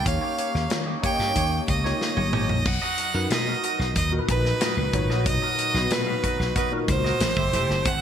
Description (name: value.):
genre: polished 1980s jazz-funk pop.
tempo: 92 BPM.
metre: 4/4.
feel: straight.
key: unclear.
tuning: A4 = 439 Hz.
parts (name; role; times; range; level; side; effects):
clear fiddle; melody; 0.0-8.0 s; B4 to G5; -26 LUFS; right 2 dB; none.
tine electric piano; accompaniment; 0.0-7.9 s; A#2 to D#5; -30 LUFS; left 2 dB; overdrive, ensemble chorus.
twangy electric guitar; riff; 0.0-7.9 s; D#4 to E#5; -33 LUFS; right 4 dB; wide subtle chorus.
dark horn section; second line; 0.1-2.3 s; A#3 to C#5; -35 LUFS; left 4 dB; none.
slap bass; bass; 0.1-8.0 s; E1 to D#3; -26 LUFS; equal; none.
modern studio drum kit; drums; 0.1-8.0 s; crash cymbal, hi-hat, kick drum, snare drum, toms; -27 LUFS; equal; gated reverb.
lush unison pad; sustained chords; 2.7-8.0 s; F#3 to B4; -36 LUFS; equal; chorus.
room: light reverb.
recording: bright 1980s-style digital production.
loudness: -21 LUFS.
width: side -9 dB against mid.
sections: 0.0-2.7 A section; 2.7-8.0 B section.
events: drum fill 2.0-2.7.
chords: 0.1 D#7; 2.7 Bmaj7; 7.2 Am7.